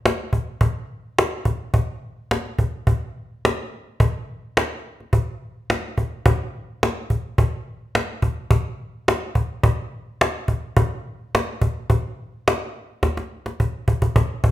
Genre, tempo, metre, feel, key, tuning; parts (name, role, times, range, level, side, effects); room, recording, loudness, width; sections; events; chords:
rock; 106 BPM; 4/4; straight
cajon; drums; 0.1-14.5 s; -19 LUFS; equal
moderate large studio reverb, RT60 0.9 s; band playing live in one room; -20 LUFS; side -14 dB against mid
0.0-14.2 A section
drum fill 13.0-14.2